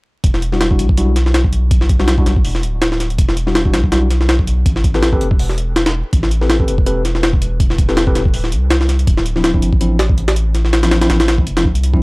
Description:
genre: drum and bass, jungle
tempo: 163 BPM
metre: 4/4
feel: swing 55% on 16ths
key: E minor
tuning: A4 = 440 Hz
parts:
  - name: soft dub sub bass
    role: bass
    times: 0.2-12.0 s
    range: D1 to C2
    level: -16 LUFS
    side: equal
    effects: none
  - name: jungle sampler-style drum kit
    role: drums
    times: 0.2-12.0 s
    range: hi-hat, kick drum, snare drum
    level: -14 LUFS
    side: equal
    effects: overdrive
  - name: mellow tine electric piano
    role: stabs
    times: 0.5-12.0 s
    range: F3 to B4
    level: -21 LUFS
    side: left 1 dB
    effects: medium stereo tremolo, vintage 12-bit sampler grit, dub echo
room: little or no reverb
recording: dry, gritty hardware recording, vinyl crackle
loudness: -12 LUFS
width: side -25 dB against mid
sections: 0.2-12.0 A section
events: none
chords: 0.2 Em9; 4.7 Am9; 8.3 Dm9

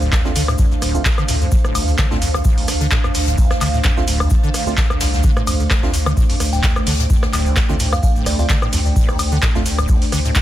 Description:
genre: acid house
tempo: 129 BPM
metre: 4/4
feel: swing 55% on 16ths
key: D minor pentatonic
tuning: A4 = 440 Hz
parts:
  - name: string machine, full ensemble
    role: sustained chords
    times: 0.0-10.4 s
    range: A3 to D5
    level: -28 LUFS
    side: left 1 dB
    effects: ensemble chorus, sidechain pumping
  - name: acid bass, square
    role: riff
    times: 0.0-10.4 s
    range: D1 to D3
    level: -24 LUFS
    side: equal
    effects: tube saturation, analog chorus
  - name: round analog bass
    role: bass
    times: 0.0-10.3 s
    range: C2 to D2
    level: -20 LUFS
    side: equal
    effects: sidechain pumping
  - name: electro analog drum machine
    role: drums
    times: 0.0-10.4 s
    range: handclaps, hi-hat, rim click, shaker, woodblock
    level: -22 LUFS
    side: equal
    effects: none
  - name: ethereal airy pad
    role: texture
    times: 0.0-10.4 s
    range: D4 to G5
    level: -26 LUFS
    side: right 3 dB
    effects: ensemble chorus, built-in reverb, sidechain pumping
  - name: electronic kick drum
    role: drums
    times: 0.1-10.4 s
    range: none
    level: -17 LUFS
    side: equal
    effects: none
  - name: soft brush drum kit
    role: drums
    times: 0.1-10.4 s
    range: hi-hat, shaker, snare drum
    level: -31 LUFS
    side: left 3 dB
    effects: high-pass filter on hats, high-pass filter on snare, high-pass filter on perc, high-pass filter on room
  - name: percussive organ stab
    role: stabs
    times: 0.2-9.6 s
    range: A3 to F4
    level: -28 LUFS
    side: right 4 dB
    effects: chorus, ping-pong delay
  - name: glassy synth bell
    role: melody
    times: 6.5-8.5 s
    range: D5 to G5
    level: -30 LUFS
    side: right 3 dB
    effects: chorus, tape echo
room: little or no reverb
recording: dense, heavily limited modern master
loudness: -14 LUFS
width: side -13 dB against mid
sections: 0.0-10.4 A section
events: none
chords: 0.0 Dm7

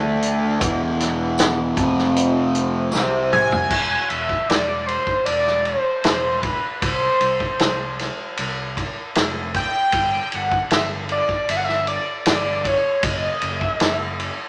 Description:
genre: psychedelic rock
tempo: 77 BPM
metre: 4/4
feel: straight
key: unclear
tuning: A4 = 440 Hz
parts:
  - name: string machine, cellos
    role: sustained chords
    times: 0.0-3.7 s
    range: C3 to D5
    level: -34 LUFS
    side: equal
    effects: none
  - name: fuzz guitar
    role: riff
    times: 0.0-3.7 s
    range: E2 to D4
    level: -22 LUFS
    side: equal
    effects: distortion, phaser
  - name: fuzz fingered electric bass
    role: bass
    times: 0.0-14.3 s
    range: E1 to D2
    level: -33 LUFS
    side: equal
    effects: overdrive
  - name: vintage drum kit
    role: drums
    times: 0.2-14.4 s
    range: crash cymbal, hi-hat, kick drum, ride cymbal, snare drum, toms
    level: -25 LUFS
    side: equal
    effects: none
  - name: tambourine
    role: percussion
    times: 1.4-3.1 s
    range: none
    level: -38 LUFS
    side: equal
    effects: none
  - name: pulse-width lead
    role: melody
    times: 3.3-14.5 s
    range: B4 to G#5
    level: -23 LUFS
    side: equal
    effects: chorus
room: wet studio reverb, RT60 0.8 s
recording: none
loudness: -21 LUFS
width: mono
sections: 0.0-3.7 A section; 3.7-14.5 B section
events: drum fill 2.9-3.7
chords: 0.0 D5; 0.6 E; 1.8 F5; 2.9 C5; 3.7 E7(#5, no3); 6.8 F5; 9.9 Em7/G (rootless); 13.0 D#m/F#

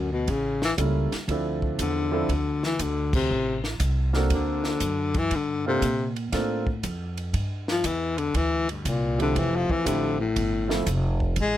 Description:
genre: jazz, small-group swing and bop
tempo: 119 BPM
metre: 4/4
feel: swing 68% on 8ths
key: F major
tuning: A4 = 441 Hz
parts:
  - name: breathy baritone saxophone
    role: melody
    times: 0.0-11.6 s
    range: Gb2 to Ab3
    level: -25 LUFS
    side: left 4 dB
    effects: none
  - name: upright bass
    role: bass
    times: 0.0-11.6 s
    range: F1 to Bb2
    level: -27 LUFS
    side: right 1 dB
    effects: none
  - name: compact cocktail drum kit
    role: drums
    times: 0.3-11.5 s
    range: crash cymbal, hi-hat, kick drum, ride cymbal, snare drum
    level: -32 LUFS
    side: equal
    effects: none
  - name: warm grand piano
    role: accompaniment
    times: 0.8-10.8 s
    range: F3 to A4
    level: -28 LUFS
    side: right 3 dB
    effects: none
room: little or no reverb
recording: close, detailed microphones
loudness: -23 LUFS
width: side -12 dB against mid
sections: 0.0-11.6 A section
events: band accent 3.0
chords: 0.3 A7b9; 1.3 Dm7; 3.3 Amadd11; 4.3 D7b13; 5.3 Gm11; 7.3 Cadd9; 9.4 Fmaj9

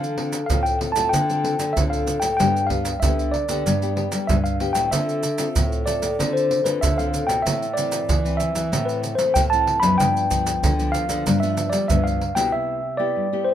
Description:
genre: samba and choro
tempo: 95 BPM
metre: 4/4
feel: straight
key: unclear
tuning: A4 = 439 Hz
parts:
  - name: mellow tine electric piano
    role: melody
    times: 0.0-13.5 s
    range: B4 to B5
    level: -22 LUFS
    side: equal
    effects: none
  - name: nylon-string guitar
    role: accompaniment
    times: 0.0-13.5 s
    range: G2 to A4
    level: -28 LUFS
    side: left 6 dB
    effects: none
  - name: nylon-string guitar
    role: bass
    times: 0.0-12.5 s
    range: F#2 to A3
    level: -26 LUFS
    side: left 1 dB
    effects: none
  - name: maracas, pandeiro and surdo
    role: percussion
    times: 0.0-12.5 s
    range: none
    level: -24 LUFS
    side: right 2 dB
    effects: none
room: light reverb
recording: minimal, uncompressed stereo recording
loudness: -19 LUFS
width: side -10 dB against mid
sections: 0.0-13.5 A section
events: break 12.5-13.5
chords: 0.0 Dm7; 2.4 G; 4.9 Dm7; 7.5 Am; 10.0 G7; 12.5 Cmaj7

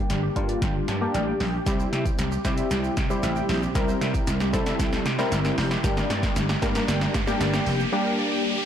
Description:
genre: dance-pop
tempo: 115 BPM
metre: 4/4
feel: straight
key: unclear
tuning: A4 = 442 Hz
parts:
  - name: warm analog keys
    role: accompaniment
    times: 0.0-8.6 s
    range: G3 to A5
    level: -27 LUFS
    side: left 2 dB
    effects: chorus, sidechain pumping, low-pass filter
  - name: ethereal airy pad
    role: sustained chords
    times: 0.1-8.7 s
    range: C3 to G4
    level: -35 LUFS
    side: left 1 dB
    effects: none
  - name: analog pluck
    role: arpeggios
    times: 0.0-8.7 s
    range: G4 to G6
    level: -35 LUFS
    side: right 4 dB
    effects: chorus, sidechain pumping, low-pass filter, ping-pong delay
  - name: vintage slap bass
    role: bass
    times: 0.1-7.8 s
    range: F1 to C3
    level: -28 LUFS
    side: equal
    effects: sidechain pumping
  - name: deep house drum kit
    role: drums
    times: 0.1-7.8 s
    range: hi-hat, kick drum, snare drum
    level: -26 LUFS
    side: equal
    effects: overdrive
  - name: tube shaker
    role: percussion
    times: 1.7-7.9 s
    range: none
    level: -45 LUFS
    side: right 10 dB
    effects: none
  - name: riser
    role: sound effects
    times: 5.0-8.7 s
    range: none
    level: -34 LUFS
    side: equal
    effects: none
room: light reverb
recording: blown-out, overdriven recording, overdrive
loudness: -22 LUFS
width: side -9 dB against mid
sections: 0.0-8.7 A section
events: build-up 0.0-8.7; drum fill 0.0-7.9; filter sweep 0.0-8.7; synth keys fill 0.6-1.7; riser 5.0-8.7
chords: 0.0 Gm; 1.7 C; 5.8 Gm

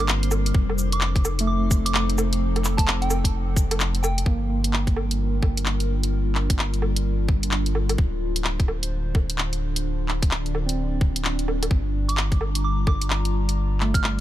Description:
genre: future garage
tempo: 129 BPM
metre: 4/4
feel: swing 62% on 16ths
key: G minor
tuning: A4 = 440 Hz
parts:
  - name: soft synth bell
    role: melody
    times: 0.0-4.3, 12.1-14.2 s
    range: G5 to F6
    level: -32 LUFS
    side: right 2 dB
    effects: chorus, dub echo
  - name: overdriven tine electric piano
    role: accompaniment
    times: 0.0-14.2 s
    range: A3 to C4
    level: -32 LUFS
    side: right 4 dB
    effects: fast tremolo, sidechain pumping, digital delay
  - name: warbly tape-like pad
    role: sustained chords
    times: 0.0-14.2 s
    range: D3 to Bb5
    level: -31 LUFS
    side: left 2 dB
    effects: chorus, built-in reverb, phaser, sidechain pumping
  - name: warm sub bass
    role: bass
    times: 0.0-14.2 s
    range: D1 to G1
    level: -24 LUFS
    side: equal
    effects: sidechain pumping
  - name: backwards swelling texture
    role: texture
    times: 0.0-4.3 s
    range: C4 to C5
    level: -41 LUFS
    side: right 1 dB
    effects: none
  - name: garage drum kit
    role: drums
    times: 0.1-14.2 s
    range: cabasa, handclaps, hi-hat, woodblock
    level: -26 LUFS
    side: equal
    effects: none
  - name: electronic kick drum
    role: drums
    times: 0.5-14.0 s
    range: none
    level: -21 LUFS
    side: equal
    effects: none
room: little or no reverb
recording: none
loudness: -21 LUFS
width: side -13 dB against mid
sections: 0.0-4.3 A section; 4.3-14.2 B section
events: none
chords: 0.0 Gm7; 0.6 F7; 4.3 Gm7; 8.0 Dm7; 11.7 Gm7

